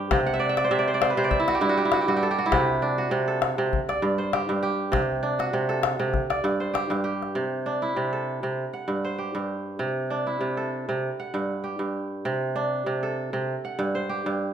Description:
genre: west african traditional, West African string and xylophone music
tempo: 99 BPM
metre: 4/4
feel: swing 54% on 16ths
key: C lydian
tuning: A4 = 439 Hz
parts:
  - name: kora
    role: arpeggios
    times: 0.0-14.5 s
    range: G2 to F#5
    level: -24 LUFS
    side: right 2 dB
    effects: none
  - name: calabash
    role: percussion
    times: 0.1-7.3 s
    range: none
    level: -28 LUFS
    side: left 5 dB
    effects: none
room: moderate recital hall reverb, RT60 1.3 s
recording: minimal, uncompressed stereo recording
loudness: -23 LUFS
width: side -8 dB against mid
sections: 0.0-7.4 A section; 7.4-14.5 B section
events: kora fill 0.3-2.5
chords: 0.1 C5; 1.3 N.C.; 2.5 D7/C; 3.7 G5; 4.9 C5; 6.1 G5; 7.4 C; 8.6 Gsus4; 9.8 C; 11.0 N.C.; 12.3 Amadd11/C; 13.5 Gsus4

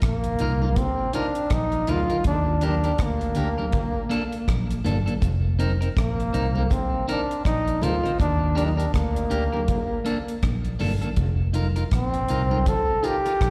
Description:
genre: roots reggae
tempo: 81 BPM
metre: 4/4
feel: swing 60% on 16ths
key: F mixolydian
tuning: A4 = 440 Hz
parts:
  - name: clear trombone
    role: melody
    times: 0.0-13.5 s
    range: Bb3 to A4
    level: -28 LUFS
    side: equal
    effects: tape echo, slapback echo
  - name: fingered electric bass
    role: bass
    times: 0.0-13.5 s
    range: F1 to Eb2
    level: -26 LUFS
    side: equal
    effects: none
  - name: deep reggae drum kit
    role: drums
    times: 0.0-13.5 s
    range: hi-hat, kick drum, rim click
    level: -27 LUFS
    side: equal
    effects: none
  - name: clean electric guitar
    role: accompaniment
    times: 0.4-13.3 s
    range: Bb3 to Bb4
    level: -33 LUFS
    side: equal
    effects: tape echo, slapback echo
  - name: congas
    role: percussion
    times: 0.6-13.5 s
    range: none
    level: -35 LUFS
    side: equal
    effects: slapback echo
room: light reverb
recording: live gig heard through the venue's PA, recital hall reverb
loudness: -24 LUFS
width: mono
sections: 0.0-13.5 A section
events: none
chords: 0.0 F7sus4; 2.3 Ebmaj7; 3.7 Bbmaj7; 5.2 F7sus4; 8.2 Ebmaj7; 9.7 Bbmaj7; 11.2 F7sus4

